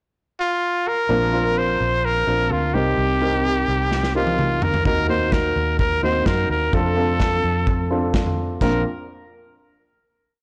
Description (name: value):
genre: piano-driven pop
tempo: 128 BPM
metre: 4/4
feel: straight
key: Bb major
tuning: A4 = 440 Hz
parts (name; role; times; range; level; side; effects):
- clear trumpet; melody; 0.4-8.8 s; F4 to C5; -24 LUFS; equal; none
- dark upright piano; accompaniment; 1.1-8.8 s; Bb1 to C5; -26 LUFS; equal; none
- vintage muted fingered electric bass; bass; 1.1-8.8 s; Bb1 to Gb2; -27 LUFS; equal; transformer saturation
- modern studio drum kit; drums; 3.9-8.7 s; china cymbal, kick drum, snare drum, toms; -25 LUFS; equal; none
room: light reverb, small room ambience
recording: blown-out, overdriven recording, overdrive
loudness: -20 LUFS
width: mono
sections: 0.0-1.1 pickup bar; 1.1-8.6 verse; 8.6-10.4 final chord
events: drum fill 3.9-4.9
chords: 0.0 N.C.; 1.1 Bbadd9; 2.7 Cm7; 4.9 Ebm; 6.7 F6; 8.6 Bbadd9